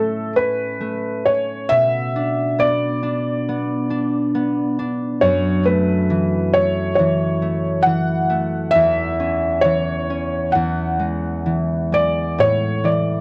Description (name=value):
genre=children's music, lullaby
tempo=67 BPM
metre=4/4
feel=rubato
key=A major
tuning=A4 = 440 Hz
part: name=felt-muted upright piano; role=melody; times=0.0-13.2 s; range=A4 to F#5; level=-22 LUFS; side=equal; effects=none
part: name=concert harp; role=accompaniment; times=0.0-13.2 s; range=E2 to D4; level=-23 LUFS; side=equal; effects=none
room=little or no reverb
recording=dry, close 1970s-style studio recording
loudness=-19 LUFS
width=mono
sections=0.0-12.4 A section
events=none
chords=0.0 A; 1.7 Bm; 5.2 F#m7; 8.7 C#m/E; 10.6 Eadd9; 12.4 A